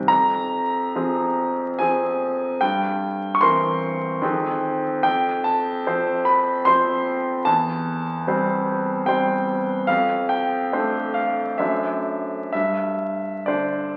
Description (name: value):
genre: classical, romantic character piece for solo piano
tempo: 63-76 BPM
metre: 3/4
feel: rubato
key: C major from 5.0 s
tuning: A4 = 440 Hz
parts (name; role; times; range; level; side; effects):
- clear concert grand piano; solo; 0.0-14.0 s; C2 to Db6; -22 LUFS; equal; none
room: wet recital hall reverb, RT60 1.6 s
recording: very old 78 rpm record, vinyl crackle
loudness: -22 LUFS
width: mono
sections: 0.0-14.0 A section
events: none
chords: 0.1 Fm; 2.6 C7/G; 4.2 Fm7; 5.0 F; 7.5 C/E; 9.9 Dm7/F; 11.6 D7/F#; 12.5 Gsus4